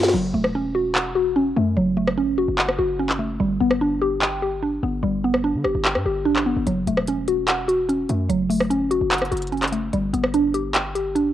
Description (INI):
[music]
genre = hip hop, trap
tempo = 147 BPM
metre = 4/4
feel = half-time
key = F# phrygian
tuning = A4 = 437 Hz
[part]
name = mallet-like synth pluck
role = accompaniment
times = 0.0-11.3 s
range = F#3 to G5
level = -21 LUFS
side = equal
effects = chorus, phaser, low-pass filter, cassette tape
[part]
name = hard-hitting 808-style bass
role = bass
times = 0.0-11.3 s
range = E1 to D3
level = -28 LUFS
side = equal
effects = none
[part]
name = trap drum kit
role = drums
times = 0.0-11.3 s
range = crash cymbal, handclaps, hi-hat, rim click, snare drum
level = -22 LUFS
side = equal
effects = cassette tape
[sound]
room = light reverb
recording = home recording on cassette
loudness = -19 LUFS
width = side -12 dB against mid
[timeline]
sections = 0.0-11.3 A section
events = break 0.1-6.7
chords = 0.1 F#m; 3.4 G; 6.7 F#m; 9.9 G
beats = | 0.14 0.54 0.95 1.36 | 1.77 2.18 2.58 2.99 | 3.40 3.81 4.22 4.62 | 5.03 5.44 5.85 6.26 | 6.67 7.07 7.48 7.89 | 8.30 8.71 9.12 9.52 | 9.93 10.34 10.75 11.16